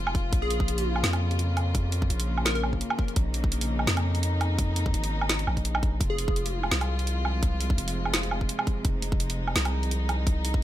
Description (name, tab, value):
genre	half-time drum and bass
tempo	169 BPM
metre	4/4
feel	swing 54% on 16ths, half-time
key	unclear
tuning	A4 = 440 Hz
part	warm chamber string section	sustained chords	0.0-10.6 s	C3 to F4	-33 LUFS	left 1 dB	sidechain pumping
part	long sustained 808-style bass	bass	0.0-10.6 s	F1 to F2	-28 LUFS	equal	none
part	drum and bass drum kit	drums	0.1-10.5 s	hi-hat, snare drum, woodblock	-29 LUFS	right 2 dB	none
part	electronic kick drum	drums	0.1-10.6 s	none	-27 LUFS	equal	none
part	plucky unison lead	melody	0.4-2.6, 6.1-6.6 s	Ab4 to Bb4	-34 LUFS	left 1 dB	phaser, ping-pong delay
room	little or no reverb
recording	none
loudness	-24 LUFS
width	side -13 dB against mid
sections	0.0-10.6 A section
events	none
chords	0.3 Bbm; 6.0 Fm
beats	| 0.33 0.68 1.04 1.39 | 1.75 2.10 2.46 2.81 | 3.17 3.52 3.88 4.23 | 4.59 4.94 5.30 5.65 | 6.01 6.36 6.72 7.07 | 7.43 7.78 8.14 8.49 | 8.85 9.20 9.56 9.91 | 10.27 10.62